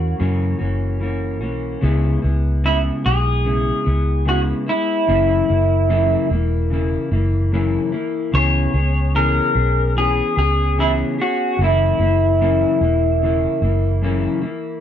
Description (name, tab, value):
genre	indie pop, bedroom pop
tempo	74 BPM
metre	4/4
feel	swing 60% on 16ths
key	C# dorian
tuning	A4 = 435 Hz
part	electric guitar through a small old amp	melody	0.0-14.0 s	E4 to C#5	-19 LUFS	equal	lush chorus, slapback echo
part	mellow electric guitar	accompaniment	0.0-14.8 s	F#2 to G#4	-22 LUFS	left 2 dB	lush chorus, vibrato effect
part	vintage muted fingered electric bass	bass	0.0-14.3 s	E1 to F#2	-18 LUFS	equal	none
room	light reverb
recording	dry, close 1970s-style studio recording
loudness	-16 LUFS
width	side -9 dB against mid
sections	0.0-1.8 A section; 1.8-14.8 B section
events	none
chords	0.0 F#7; 1.8 C#m7; 5.1 F#7; 8.3 C#m7; 11.6 F#7